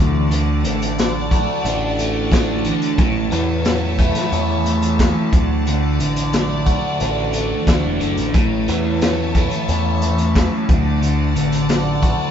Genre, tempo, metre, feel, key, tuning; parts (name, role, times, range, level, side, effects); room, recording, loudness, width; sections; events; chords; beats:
psychedelic rock; 90 BPM; 4/4; straight; A4 = 440 Hz
clear studio string section; sustained chords; 0.0-12.3 s; C#5 to A5; -28 LUFS; left 2 dB
crunchy overdriven guitar; riff; 0.0-12.3 s; A2 to F#4; -20 LUFS; equal; phaser
growling picked electric bass; bass; 0.0-12.1 s; E1 to E2; -22 LUFS; equal; overdrive
tanpura; drone; 0.0-12.3 s; A2 to A3; -28 LUFS; equal
raw garage drum kit; drums; 0.3-12.2 s; hi-hat, kick drum, snare drum; -20 LUFS; equal
moderate studio reverb, RT60 0.6 s; band playing live in one room, nothing above 7.7 kHz; -16 LUFS; side -8 dB against mid
0.0-12.3 A section
0.0 D; 3.0 A; 5.3 D; 8.3 A; 10.7 D
| 0.31 0.98 1.65 2.32 | 2.99 3.66 4.33 5.00 | 5.67 6.34 7.01 7.68 | 8.35 9.02 9.69 10.36 | 11.03 11.69